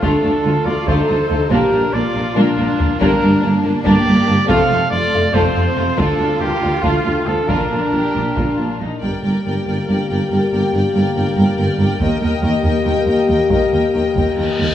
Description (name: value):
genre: cinematic, epic orchestral film score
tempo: 281 BPM (eighths)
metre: 7/8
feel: straight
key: G minor from 9.0 s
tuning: A4 = 440 Hz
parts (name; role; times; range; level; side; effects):
- rich symphonic violin section; melody; 0.0-14.7 s; A3 to G5; -28 LUFS; left 4 dB; none
- rich symphonic violin section; second line; 0.0-14.7 s; A3 to Eb5; -24 LUFS; left 3 dB; none
- rich studio viola section; accompaniment; 0.0-14.7 s; A3 to Bb4; -23 LUFS; right 1 dB; none
- warm French horn section; sustained chords; 0.0-14.7 s; Bb3 to A4; -21 LUFS; left 3 dB; none
- clear trumpet; stabs; 0.0-8.8 s; F4 to F5; -20 LUFS; right 1 dB; none
- dark tuba; bass; 0.0-14.7 s; F1 to Eb2; -22 LUFS; right 1 dB; none
- rich symphonic cello section; bass; 0.0-14.7 s; D2 to Bb2; -22 LUFS; right 1 dB; none
- warm symphonic double bass section; bass; 0.0-14.7 s; F1 to Eb2; -24 LUFS; right 2 dB; none
- taiko ensemble; drums; 0.0-14.7 s; none; -22 LUFS; equal; none
- cymbal swell; sound effects; 14.2-14.7 s; none; -26 LUFS; left 2 dB; none
room: wet scoring stage reverb, RT60 2.2 s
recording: small room ambience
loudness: -14 LUFS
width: side -11 dB against mid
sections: 0.0-9.0 A section; 9.0-14.7 B section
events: drum fill 2.4-3.0; cymbal swell 14.2-14.7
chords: 0.0 Dm; 1.5 Bb; 3.0 Gm; 4.5 F; 6.0 Dm; 7.5 Bb; 9.0 Gm; 12.0 Eb